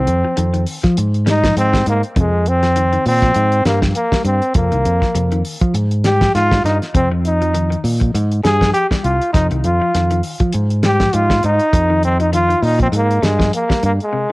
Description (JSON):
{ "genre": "afrobeat", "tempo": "100 BPM", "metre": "4/4", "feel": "swing 56% on 16ths", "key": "F minor", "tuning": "A4 = 441 Hz", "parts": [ { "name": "bright trombone", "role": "melody", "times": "0.0-14.3 s", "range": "Ab3 to Ab4", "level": "-17 LUFS", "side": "equal", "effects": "cassette tape, tape echo" }, { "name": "clean electric guitar", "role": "arpeggios", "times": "0.0-14.3 s", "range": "C3 to G3", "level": "-25 LUFS", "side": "left 5 dB", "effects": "cassette tape" }, { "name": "fingered electric bass", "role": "bass", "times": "0.0-14.0 s", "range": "C2 to F3", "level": "-16 LUFS", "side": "equal", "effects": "none" }, { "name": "damped 70s drum kit", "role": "drums", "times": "0.1-14.1 s", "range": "hi-hat, kick drum, snare drum", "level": "-19 LUFS", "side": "equal", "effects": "cassette tape" } ], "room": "small room ambience", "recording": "home recording on cassette", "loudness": "-13 LUFS", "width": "side -21 dB against mid", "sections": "0.0-14.3 A section", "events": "none", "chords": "0.0 F5; 1.0 Abmaj13; 2.2 F7sus4; 3.4 Abmaj13/G; 4.5 F7sus4; 5.7 Fmadd9; 6.9 F7sus4; 8.1 Abmaj7; 9.3 F5; 10.5 Fm9/Ab; 11.7 F7sus4; 12.9 Gm7" }